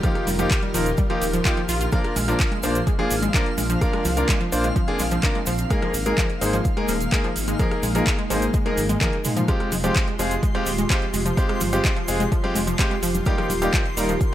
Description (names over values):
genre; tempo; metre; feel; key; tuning
progressive house; 127 BPM; 4/4; straight; F dorian; A4 = 440 Hz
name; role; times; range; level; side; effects
airy breathy pad; sustained chords; 0.0-14.3 s; Eb3 to Bb4; -30 LUFS; equal; chorus, sidechain pumping
wide unison pluck; arpeggios; 0.0-14.2 s; F3 to F4; -28 LUFS; equal; sidechain pumping, digital delay
clear grand piano; stabs; 0.0-14.1 s; Ab3 to C5; -26 LUFS; equal; sidechain pumping, digital delay
deep house drum kit; drums; 0.0-14.3 s; handclaps, hi-hat, rim click, toms; -28 LUFS; equal; overdrive
electronic kick drum; drums; 0.0-14.3 s; none; -23 LUFS; equal; overdrive
tube shaker; percussion; 0.0-14.3 s; none; -33 LUFS; right 3 dB; none
twinkling granular texture; texture; 0.0-14.3 s; F5 to C6; -35 LUFS; equal; built-in reverb, sidechain pumping
dark detuned saw bass; bass; 0.3-14.2 s; Eb1 to Ab2; -26 LUFS; equal; sidechain pumping
congas; percussion; 9.7-13.6 s; none; -33 LUFS; left 2 dB; none
room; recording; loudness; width
light reverb, digital ambience; none; -19 LUFS; side -12 dB against mid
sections
0.0-14.3 A section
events
drum fill 8.5-9.5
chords
0.0 Ebadd9; 1.9 Bb; 5.7 Absus2; 9.5 Fmadd9; 13.3 Ebadd9